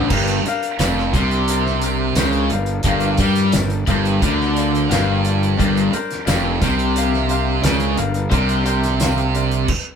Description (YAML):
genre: classic rock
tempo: 88 BPM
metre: 4/4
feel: straight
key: G minor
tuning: A4 = 437 Hz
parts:
  - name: bright concert grand piano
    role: accompaniment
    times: 0.0-9.6 s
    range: D4 to Bb5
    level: -26 LUFS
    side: left 6 dB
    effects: none
  - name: overdriven electric guitar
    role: riff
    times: 0.0-9.7 s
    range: F2 to G3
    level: -24 LUFS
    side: left 1 dB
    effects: tremolo
  - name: overdriven semi-hollow guitar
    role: riff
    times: 0.0-9.7 s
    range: F2 to G3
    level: -25 LUFS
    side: left 5 dB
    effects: none
  - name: tight distorted guitar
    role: riff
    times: 0.0-9.7 s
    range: F2 to G3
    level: -23 LUFS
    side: right 8 dB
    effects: distortion
  - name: fuzz fingered electric bass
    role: bass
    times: 0.0-9.6 s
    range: F1 to G2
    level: -21 LUFS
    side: equal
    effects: overdrive
  - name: cloth-damped thuddy drum kit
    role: drums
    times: 0.1-9.8 s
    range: crash cymbal, hi-hat, kick drum, snare drum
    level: -22 LUFS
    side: equal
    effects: none
  - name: tambourine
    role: percussion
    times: 0.5-9.5 s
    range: none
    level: -37 LUFS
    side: left 5 dB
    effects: none
room: light reverb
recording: band playing live in one room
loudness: -16 LUFS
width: side -7 dB against mid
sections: 0.1-10.0 A section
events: grand piano fill 4.2-5.6; stop 9.7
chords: 0.1 Gm